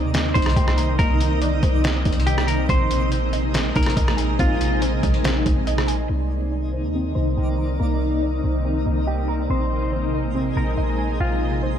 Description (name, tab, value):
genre	hip hop, atmospheric cloud-rap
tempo	141 BPM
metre	4/4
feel	half-time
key	C minor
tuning	A4 = 440 Hz
part	shimmering ambient pad	sustained chords	0.0-11.8 s	C3 to Eb4	-25 LUFS	equal	chorus, built-in reverb, low-pass filter
part	warbly dusty pluck	arpeggios	0.0-11.8 s	Bb3 to Bb5	-31 LUFS	right 2 dB	chorus, low-pass filter, tape echo
part	clean 808-style bass	bass	0.0-11.8 s	Bb1 to Eb2	-23 LUFS	equal	none
part	twinkling granular texture	texture	0.1-11.8 s	Ab3 to D5	-34 LUFS	left 1 dB	built-in reverb
part	trip hop sampler-style drum kit	drums	0.1-6.0 s	hi-hat, kick drum, rim click, snare drum	-22 LUFS	equal	overdrive
part	semi-hollow electric guitar	melody	0.3-11.6 s	F4 to D5	-29 LUFS	equal	wide subtle chorus, low-pass filter, tape echo
room	little or no reverb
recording	none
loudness	-19 LUFS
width	side -9 dB against mid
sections	0.0-6.1 A section; 6.1-11.8 B section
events	filter sweep 6.1-11.8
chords	0.0 Cm9; 2.7 Bb9sus4; 6.1 Cm9; 9.5 Bb9sus4